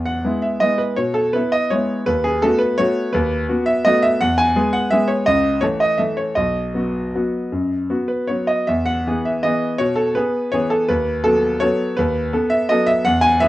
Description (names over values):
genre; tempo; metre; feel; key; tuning
classical, piano waltz; 148-180 BPM; 3/4; rubato; E major; A4 = 437 Hz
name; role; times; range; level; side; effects
clear grand piano; solo; 0.0-13.5 s; B1 to G#5; -16 LUFS; equal; none
room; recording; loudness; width
moderate studio reverb, RT60 0.5 s; worn, warbling old tape, cassette tape, warbly pitch drift; -16 LUFS; side -16 dB against mid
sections
0.0-13.5 A section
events
none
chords
0.0 E; 2.1 B7/D#; 4.2 E; 5.3 A/C#; 6.4 B; 8.7 E; 10.9 B7/D#